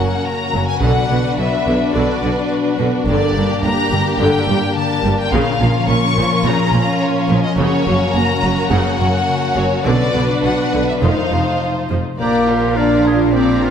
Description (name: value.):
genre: cinematic.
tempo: 106 BPM.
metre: 4/4.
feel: straight.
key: unclear.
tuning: A4 = 440 Hz.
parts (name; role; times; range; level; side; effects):
rich studio violin section; melody; 0.0-13.7 s; Db5 to Db6; -22 LUFS; left 3 dB; none.
warm symphonic violin section; second line; 0.0-13.7 s; F4 to D5; -23 LUFS; left 2 dB; none.
warm symphonic viola section; accompaniment; 0.0-13.7 s; Db3 to F4; -22 LUFS; right 1 dB; none.
mellow French horn section; sustained chords; 0.0-13.7 s; A3 to Eb4; -21 LUFS; left 1 dB; none.
concert harp; arpeggios; 0.0-13.7 s; F2 to D5; -23 LUFS; left 6 dB; none.
bright symphonic double bass section; bass; 0.0-13.7 s; F1 to B1; -22 LUFS; right 2 dB; none.
rich symphonic cello section; bass; 0.0-13.7 s; F2 to B2; -22 LUFS; right 3 dB; none.
clear oboe; second line; 12.2-13.7 s; F4 to Ab4; -24 LUFS; right 1 dB; none.
mellow clarinet; second line; 12.2-13.7 s; Bb4 to D5; -26 LUFS; equal; none.
room: wet scoring stage reverb, RT60 1.6 s.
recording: none.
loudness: -14 LUFS.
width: side -8 dB against mid.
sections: 0.0-12.2 A section; 12.2-13.7 B section.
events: none.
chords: 0.0 F#; 0.8 Bm; 3.1 Gm; 5.3 Bbm; 7.6 F#; 9.8 Bm; 11.0 F7; 12.2 Bb.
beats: 0.26 | 0.82 1.39 1.95 2.52 | 3.08 3.65 4.21 4.77 | 5.33 5.89 6.45 7.01 | 7.57 8.14 8.71 9.28 | 9.85 10.43 11.02 11.61 | 12.19 12.77 13.34.